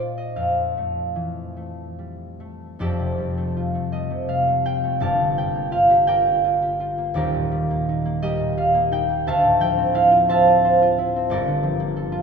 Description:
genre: classical, solo harp piece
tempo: 48-61 BPM (dotted quarters)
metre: 6/8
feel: rubato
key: F mixolydian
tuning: A4 = 440 Hz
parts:
  - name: concert harp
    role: solo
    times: 0.0-12.2 s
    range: Eb1 to A5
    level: -18 LUFS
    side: right 1 dB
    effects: none
room: wet cathedral reverb, RT60 4.0 s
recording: recorded in a church or concert hall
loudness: -18 LUFS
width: side -6 dB against mid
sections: 0.0-2.8 A section; 2.8-12.2 B section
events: none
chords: 0.4 Fmaj9; 2.8 Fadd9; 5.0 Gm9; 7.2 Ebmaj7; 9.3 Dm9; 11.3 Gm9

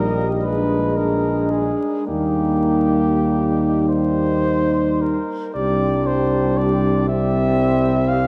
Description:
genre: classical, hymn-like piece for brass band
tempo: 32-40 BPM (dotted quarters)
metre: 6/8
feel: rubato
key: Eb major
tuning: A4 = 437 Hz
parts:
  - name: mellow cornet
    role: melody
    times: 0.0-8.3 s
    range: G4 to F5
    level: -26 LUFS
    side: equal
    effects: none
  - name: mellow French horn section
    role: second line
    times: 0.0-8.3 s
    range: D4 to G4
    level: -24 LUFS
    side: equal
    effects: none
  - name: bright trombone section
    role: accompaniment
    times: 0.0-8.3 s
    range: G3 to D4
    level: -27 LUFS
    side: equal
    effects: none
  - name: clear trombone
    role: accompaniment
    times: 0.0-8.3 s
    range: G3 to Bb3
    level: -28 LUFS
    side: equal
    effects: none
  - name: mellow tuba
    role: bass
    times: 0.0-8.3 s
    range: Bb1 to Eb2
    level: -25 LUFS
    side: equal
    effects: none
room: wet cathedral reverb, RT60 6.0 s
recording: in a vast, echoing space, vinyl crackle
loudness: -19 LUFS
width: mono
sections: 0.0-5.6 A section; 5.6-8.3 B section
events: none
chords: 0.5 Bb7; 2.1 Eb; 5.6 C5; 7.1 C

